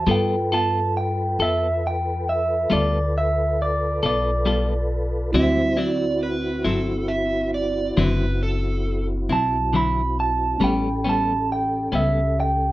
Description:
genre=blues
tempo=46 BPM (dotted quarters)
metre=12/8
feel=straight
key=unclear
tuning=A4 = 438 Hz
part: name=electric guitar through a small old amp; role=melody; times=0.0-12.7 s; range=D5 to B5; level=-23 LUFS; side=right 2 dB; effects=none
part: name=bright tine electric piano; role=accompaniment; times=0.0-12.7 s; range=C4 to B5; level=-29 LUFS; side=right 2 dB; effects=none
part: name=mellow tonewheel organ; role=sustained chords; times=0.0-12.7 s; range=G3 to C5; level=-28 LUFS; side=equal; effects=chorus vibrato, stopped rotary speaker
part: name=upright bass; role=bass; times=0.0-12.7 s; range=F#1 to G2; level=-25 LUFS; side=equal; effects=none
part: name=clean electric guitar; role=accompaniment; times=0.1-12.2 s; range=A2 to A4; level=-23 LUFS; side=left 3 dB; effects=tremolo
part: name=overdriven slide guitar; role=second line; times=5.3-9.1 s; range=A4 to E5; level=-26 LUFS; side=right 2 dB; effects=none
room=moderate studio reverb, RT60 0.7 s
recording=rough home demo mix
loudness=-19 LUFS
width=side -16 dB against mid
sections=0.0-12.7 A section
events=none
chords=0.1 G9; 5.3 D9; 10.6 A9

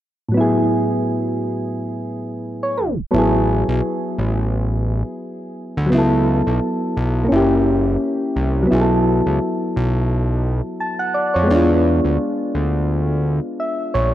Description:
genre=hip hop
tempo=86 BPM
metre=4/4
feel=swing 57% on 16ths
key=A major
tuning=A4 = 440 Hz
part: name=soft electric-piano-like synth keys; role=accompaniment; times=0.3-14.1 s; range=A2 to A5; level=-18 LUFS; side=equal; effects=chorus
part: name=fat analog bass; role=bass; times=3.1-14.1 s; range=F#1 to F2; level=-19 LUFS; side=equal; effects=none
room=wet lush hall reverb, RT60 2.5 s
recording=dreamy mix soaked in reverb, tape stop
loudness=-16 LUFS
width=side -13 dB against mid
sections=0.3-3.1 A section; 3.1-14.1 B section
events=tape stop 2.8-3.1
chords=0.3 Asus2; 5.9 B9sus4; 7.3 F#7b9; 8.7 B9sus4; 11.5 E7b9

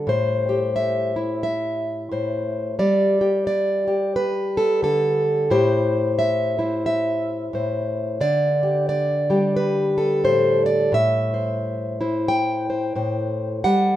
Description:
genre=folk, solo fingerstyle acoustic guitar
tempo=89 BPM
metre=4/4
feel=swing 61% on 8ths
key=A minor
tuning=A4 = 440 Hz
part: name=fingerpicked plugged-in steel-string acoustic guitar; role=solo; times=0.0-14.0 s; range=A2 to G5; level=-19 LUFS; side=equal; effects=none
room=light reverb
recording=minimal, uncompressed stereo recording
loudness=-19 LUFS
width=side -13 dB against mid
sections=0.1-14.0 A section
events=none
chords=0.1 Am7; 2.8 Gsus2; 5.5 Am7; 8.2 Dsus4; 10.9 Am7

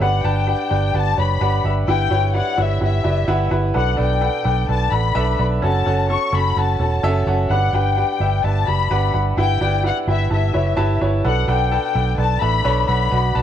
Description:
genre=piano-driven pop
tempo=128 BPM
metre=4/4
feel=straight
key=B minor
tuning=A4 = 440 Hz
part: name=dark studio violin section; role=melody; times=0.0-13.4 s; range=E5 to C#6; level=-22 LUFS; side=left 8 dB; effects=none
part: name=clear concert grand piano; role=accompaniment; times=0.0-13.4 s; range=G2 to A5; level=-22 LUFS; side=right 1 dB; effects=none
part: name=vintage muted fingered electric bass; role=bass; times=0.0-13.4 s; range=E1 to B1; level=-19 LUFS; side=right 2 dB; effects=none
room=light reverb, small room ambience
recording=none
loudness=-16 LUFS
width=side -10 dB against mid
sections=0.0-13.4 A section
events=none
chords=0.0 Gmaj7; 1.9 Emadd9/G; 3.8 Bm7; 5.6 F#m; 7.5 Gmaj7; 9.4 Emadd9/G; 11.2 Bm7

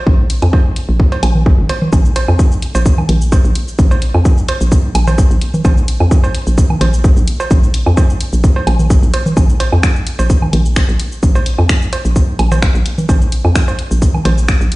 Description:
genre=minimal techno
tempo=129 BPM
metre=4/4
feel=swing 53% on 16ths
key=unclear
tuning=A4 = 438 Hz
part: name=hollow knocking FM bass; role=bass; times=0.1-14.7 s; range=Ab1 to F2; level=-14 LUFS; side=equal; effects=sidechain pumping
part: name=electronic kick drum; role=drums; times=0.1-14.6 s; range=none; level=-12 LUFS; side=equal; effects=none
part: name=house drum kit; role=drums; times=0.3-14.8 s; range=cabasa, finger snaps, hi-hat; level=-23 LUFS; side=left 1 dB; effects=none
part: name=woodblock, cowbell and congas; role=percussion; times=0.4-14.4 s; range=none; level=-20 LUFS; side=right 2 dB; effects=dub echo
room=little or no reverb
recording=played on a big sound system in a bare room, stone room reverb, nothing above 10.3 kHz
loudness=-10 LUFS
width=side -20 dB against mid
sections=0.0-14.8 A section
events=none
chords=none

